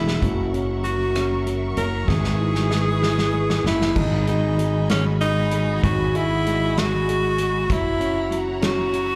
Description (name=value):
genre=six-eight pop ballad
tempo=64 BPM (dotted quarters)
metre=6/8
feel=straight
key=G# minor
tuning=A4 = 440 Hz
part: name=bright tenor saxophone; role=melody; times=0.0-9.2 s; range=C#4 to A#4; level=-26 LUFS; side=equal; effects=slapback echo, delay
part: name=warm concert grand piano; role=accompaniment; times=0.0-9.2 s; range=F#3 to E4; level=-30 LUFS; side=equal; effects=slapback echo
part: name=rich studio string section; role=sustained chords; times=0.0-9.2 s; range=E4 to C#6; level=-36 LUFS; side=equal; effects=none
part: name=sustaining fretless electric bass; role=bass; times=0.0-9.2 s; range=E1 to G#1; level=-26 LUFS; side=equal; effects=none
part: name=natural country drum kit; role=drums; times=0.1-9.1 s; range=crash cymbal, hi-hat, kick drum, rim click, snare drum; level=-28 LUFS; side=equal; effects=none
room=little or no reverb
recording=live gig heard through the venue's PA, club reverb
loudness=-21 LUFS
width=mono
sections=0.0-4.0 A section; 4.0-9.2 B section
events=drum fill 0.0, 2.1-4.0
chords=0.2 F#7; 2.1 E6/G#; 4.0 G#m7; 7.7 F#7